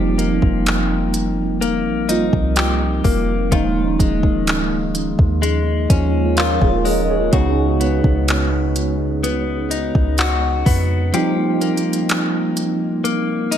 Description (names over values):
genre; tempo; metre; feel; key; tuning
contemporary R&B; 63 BPM; 4/4; straight; F minor; A4 = 441 Hz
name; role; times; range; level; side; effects
mellow tine electric piano; accompaniment; 0.0-13.6 s; F3 to Eb5; -20 LUFS; right 4 dB; ensemble chorus
direct-recorded clean electric guitar; arpeggios; 0.0-13.6 s; Db3 to G4; -22 LUFS; left 8 dB; lush chorus, tape echo
clean 808-style bass; bass; 0.0-11.1 s; Db1 to F2; -21 LUFS; equal; none
smooth R&B drum kit; drums; 0.2-13.6 s; handclaps, hi-hat, kick drum; -20 LUFS; equal; none
room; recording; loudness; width
little or no reverb; lossy compression artefacts; -15 LUFS; side -9 dB against mid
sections
0.0-13.6 A section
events
kick muted 11.1-13.6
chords
0.0 F9sus4; 3.5 Eb9sus4; 7.3 Db9sus4; 11.1 F9sus4